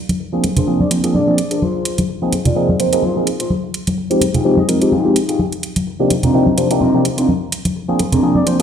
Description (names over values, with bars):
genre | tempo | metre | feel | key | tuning
filtered disco house | 127 BPM | 4/4 | swing 55% on 16ths | unclear | A4 = 440 Hz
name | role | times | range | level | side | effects
electronic hi-hat | drums | 0.1-8.6 s | none | -24 LUFS | right 3 dB | small room ambience
congas and tambourine | percussion | 0.1-8.6 s | none | -20 LUFS | equal | low-pass filter on perc
mellow electric guitar | riff | 0.2-8.4 s | C4 to D5 | -19 LUFS | left 1 dB | low-pass filter
barky tine electric piano | accompaniment | 0.3-8.6 s | C3 to C5 | -16 LUFS | equal | overdrive, phaser, low-pass filter
bright trumpet section | melody | 0.8-1.7, 4.6-4.7, 8.4-8.5 s | D5 to Eb5 | -26 LUFS | left 1 dB | vintage 12-bit sampler grit, low-pass filter
room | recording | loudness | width
moderate plate reverb, RT60 1.3 s, digital ambience | played on a big sound system in a bare room, large studio reverb | -14 LUFS | side -8 dB against mid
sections
0.0-8.6 A section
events
none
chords
0.0 Bb9; 1.6 Ab6; 3.7 Fm9; 5.6 Cm11; 7.5 Bb9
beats
0.44 0.91 1.38 | 1.85 2.33 2.80 3.27 | 3.74 4.22 4.69 5.16 | 5.63 6.11 6.58 7.05 | 7.52 8.00 8.47